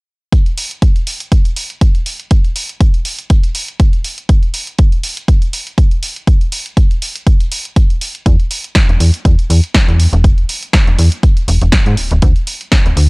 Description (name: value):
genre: filtered disco house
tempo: 121 BPM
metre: 4/4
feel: swing 54% on 16ths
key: E mixolydian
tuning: A4 = 440 Hz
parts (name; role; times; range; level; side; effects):
- electronic kick drum; drums; 0.3-12.8 s; none; -10 LUFS; equal; none
- punchy analog drum machine; drums; 0.3-13.1 s; hi-hat, snare drum; -18 LUFS; equal; sidechain pumping on hats
- slap-like FM bass; bass; 8.3-13.1 s; D1 to G#2; -11 LUFS; equal; tube saturation, sidechain pumping, low-pass filter
room: little or no reverb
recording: dry, gritty hardware recording, cassette tape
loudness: -11 LUFS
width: side -32 dB against mid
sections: 0.3-13.1 A section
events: none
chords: none